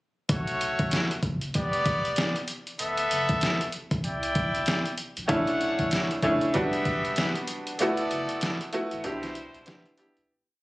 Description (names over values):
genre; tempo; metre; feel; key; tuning
hip hop, boom-bap hip-hop; 96 BPM; 4/4; swing 60% on 16ths; B minor; A4 = 440 Hz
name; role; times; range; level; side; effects
brilliant trumpet section; stabs; 0.3-10.0 s; G3 to G5; -29 LUFS; left 1 dB; high-pass filter, low-pass filter, slapback echo
saturated sub bass; bass; 0.3-10.3 s; D1 to C2; -38 LUFS; equal; none
trip hop sampler-style drum kit; drums; 0.3-10.3 s; hi-hat, kick drum, snare drum; -29 LUFS; equal; none
bright upright piano; accompaniment; 5.3-10.3 s; B2 to G4; -26 LUFS; equal; high-pass filter, low-pass filter
room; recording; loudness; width
light reverb, small room ambience; recorded on a phone in the room, club reverb; -25 LUFS; side -18 dB against mid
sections
0.3-10.3 hook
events
break 7.8-10.3; fade-out 7.8-10.3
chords
0.3 Bsus2; 1.5 Em7; 2.8 D69; 4.0 Cadd9; 5.3 Bm11; 6.5 Em9; 7.8 D69; 9.0 Cmaj9